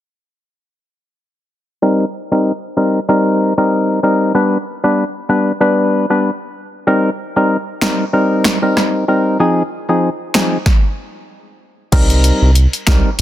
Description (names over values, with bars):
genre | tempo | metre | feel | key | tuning
dancehall | 95 BPM | 4/4 | swing 56% on 16ths | C minor | A4 = 439 Hz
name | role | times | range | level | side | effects
percussive organ stab | accompaniment | 1.8-13.1 s | F3 to B4 | -14 LUFS | left 1 dB | chorus, low-pass filter
deep house drum kit | drums | 7.8-13.2 s | crash cymbal, finger snaps, hi-hat, kick drum, rim click, snare drum | -14 LUFS | equal | overdrive
round analog bass | bass | 11.9-13.2 s | C2 | -11 LUFS | equal | none
room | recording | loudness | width
light reverb | dense, heavily limited modern master | -12 LUFS | side -12 dB against mid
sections
1.8-11.9 A section; 11.9-13.2 B section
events
filter sweep on synth stab 1.8-11.9; stop 10.7-11.9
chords
1.8 Cm7; 4.3 G; 6.9 Cm7; 9.4 Fm7; 11.9 Cm7